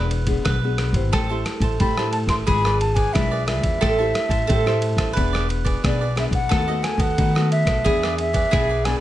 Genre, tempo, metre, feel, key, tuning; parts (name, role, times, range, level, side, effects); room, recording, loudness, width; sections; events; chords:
samba and choro; 89 BPM; 4/4; straight; A4 = 439 Hz
wooden flute; melody; 0.0-9.0 s; D5 to C6; -25 LUFS; equal
mandolin; second line; 0.0-9.0 s; G#4 to B4; -26 LUFS; right 3 dB
nylon-string guitar; accompaniment; 0.0-9.0 s; B2 to C5; -28 LUFS; left 4 dB
upright bass; bass; 0.0-9.0 s; E1 to D#3; -23 LUFS; equal
dusty soul sampler-style drum kit; drums; 0.1-9.0 s; kick drum, ride cymbal, rim click; -24 LUFS; equal
cavaquinho; accompaniment; 1.1-9.0 s; D#4 to A5; -31 LUFS; right 4 dB
light reverb; nothing above 10.5 kHz; -18 LUFS; side -13 dB against mid
0.0-9.0 A section
0.0 E7; 1.1 Am7; 2.5 E7b9/G#; 3.8 Am7; 5.2 E7; 6.5 B7/D#; 7.9 E7